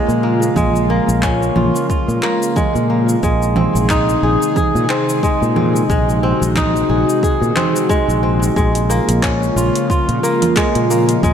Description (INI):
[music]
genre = organic downtempo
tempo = 90 BPM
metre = 4/4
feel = swing 56% on 16ths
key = Bb minor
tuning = A4 = 440 Hz
[part]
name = airy breathy pad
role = sustained chords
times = 0.0-11.3 s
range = C3 to Ab4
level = -19 LUFS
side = left 1 dB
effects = chorus, sidechain pumping
[part]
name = kora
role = arpeggios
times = 0.0-11.3 s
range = Ab3 to Ab4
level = -18 LUFS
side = equal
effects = tape echo
[part]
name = fretless electric bass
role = bass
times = 0.1-11.3 s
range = Bb1 to Bb2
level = -18 LUFS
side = equal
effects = sidechain pumping
[part]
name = deep house drum kit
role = drums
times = 0.1-11.3 s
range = cabasa, congas, handclaps, hi-hat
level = -23 LUFS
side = right 3 dB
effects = none
[part]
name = electronic kick drum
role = drums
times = 0.6-11.3 s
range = none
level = -19 LUFS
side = equal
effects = none
[sound]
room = wet plate reverb, RT60 2.6 s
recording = dreamy mix soaked in reverb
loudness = -13 LUFS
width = side -8 dB against mid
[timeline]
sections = 0.0-8.6 A section; 8.6-11.3 B section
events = none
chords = 0.0 Bbm7; 3.2 Ab/Bb; 8.6 Bbm7